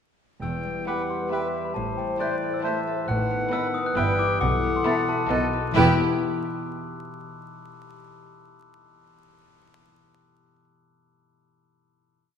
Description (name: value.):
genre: cinematic, playful, whimsical film cue.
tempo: 135 BPM.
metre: 3/4.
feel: straight.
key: E minor.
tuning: A4 = 441 Hz.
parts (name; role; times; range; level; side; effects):
glockenspiel with rubber mallets; melody; 0.4-6.0 s; G5 to F#6; -31 LUFS; left 3 dB; none.
clear clarinet; second line; 0.4-5.9 s; E4 to G5; -31 LUFS; equal; none.
dark French horn section; sustained chords; 0.4-5.9 s; D#3 to C5; -30 LUFS; left 1 dB; none.
concert harp; arpeggios; 0.4-7.1 s; E2 to E5; -31 LUFS; left 5 dB; none.
clear studio cello section; bass; 0.4-6.0 s; E2 to B2; -30 LUFS; right 2 dB; none.
rich studio double bass section; bass; 0.4-6.0 s; E1 to B1; -30 LUFS; right 1 dB; none.
clear studio violin section; melody; 0.9-6.0 s; G4 to C5; -34 LUFS; left 3 dB; none.
flute section; second line; 0.9-6.0 s; D#5 to G5; -33 LUFS; right 4 dB; none.
rich studio violin section; second line; 0.9-6.0 s; D#4 to E4; -33 LUFS; left 1 dB; none.
warm oboe; second line; 0.9-5.9 s; A4 to C5; -33 LUFS; right 3 dB; none.
rich studio viola section; accompaniment; 0.9-6.0 s; G3 to B3; -33 LUFS; right 2 dB; none.
room: wet scoring stage reverb, RT60 1.9 s.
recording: minimal, uncompressed stereo recording, vinyl crackle.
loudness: -22 LUFS.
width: side -7 dB against mid.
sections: 0.4-5.7 A section; 5.7-7.1 final chord.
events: none.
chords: 0.4 Em; 1.8 Am; 3.1 B7/A; 4.0 Em/G; 4.4 B7sus4; 5.3 B7; 5.7 Em.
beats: | 0.42 0.87 1.32 | 1.76 2.20 2.64 | 3.09 3.53 3.97 | 4.41 4.85 5.30 | 5.75 6.19 6.64.